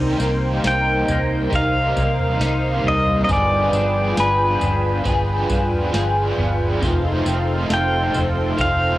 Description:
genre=dream pop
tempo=68 BPM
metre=4/4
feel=straight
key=unclear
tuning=A4 = 439 Hz
part: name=biting overdriven guitar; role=accompaniment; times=0.0-9.0 s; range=F2 to Ab4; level=-26 LUFS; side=right 1 dB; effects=tremolo, lush chorus, cassette tape, shimmer reverb
part: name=warm analog pad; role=sustained chords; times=0.0-9.0 s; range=Eb4 to G5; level=-24 LUFS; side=right 1 dB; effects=chorus, cassette tape, shimmer reverb
part: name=semi-hollow electric guitar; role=arpeggios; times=0.0-9.0 s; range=F2 to Ab4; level=-26 LUFS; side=left 2 dB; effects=ensemble chorus, cassette tape, analog delay, shimmer reverb
part: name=vintage muted fingered electric bass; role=bass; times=0.0-9.0 s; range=F1 to C3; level=-22 LUFS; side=equal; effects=none
part: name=soft vintage rhythm box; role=drums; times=0.2-8.8 s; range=kick drum, snare drum, tambourine, toms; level=-26 LUFS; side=equal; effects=cassette tape
part: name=pedal steel guitar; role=melody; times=0.7-9.0 s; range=B4 to G5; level=-21 LUFS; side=equal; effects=cassette tape, analog delay, shimmer reverb
room=moderate booth ambience, RT60 0.2 s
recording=home recording on cassette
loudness=-17 LUFS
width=side -16 dB against mid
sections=0.0-9.0 A section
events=none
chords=0.0 Cm7; 3.3 G7b9; 6.8 F7

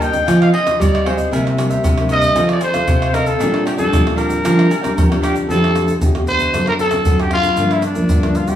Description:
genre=samba and choro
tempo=115 BPM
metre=4/4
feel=straight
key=Bb major, F major from 5.5 s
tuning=A4 = 437 Hz
part: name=growling trumpet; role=melody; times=0.0-8.6 s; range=D4 to G5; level=-18 LUFS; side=left 1 dB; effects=none
part: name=cavaquinho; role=accompaniment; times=0.0-5.5 s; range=D4 to G5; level=-24 LUFS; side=right 1 dB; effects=none
part: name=nylon-string guitar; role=accompaniment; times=0.0-8.6 s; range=G2 to A4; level=-21 LUFS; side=left 1 dB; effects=none
part: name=nylon-string guitar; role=bass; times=0.0-8.5 s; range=E2 to G3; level=-19 LUFS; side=right 1 dB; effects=none
part: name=agogo bells, tube shaker, surdo, pandeiro and tamborim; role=percussion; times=0.0-8.6 s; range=none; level=-20 LUFS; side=equal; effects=none
room=wet large studio reverb, RT60 0.9 s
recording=band playing live in one room, small room ambience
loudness=-13 LUFS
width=side -10 dB against mid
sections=0.0-5.5 A section; 5.5-8.6 B section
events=none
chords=0.3 Fm7; 1.3 C7; 2.4 F7; 3.4 Bb69; 5.5 F69; 6.5 D7/F#; 7.6 Gm7

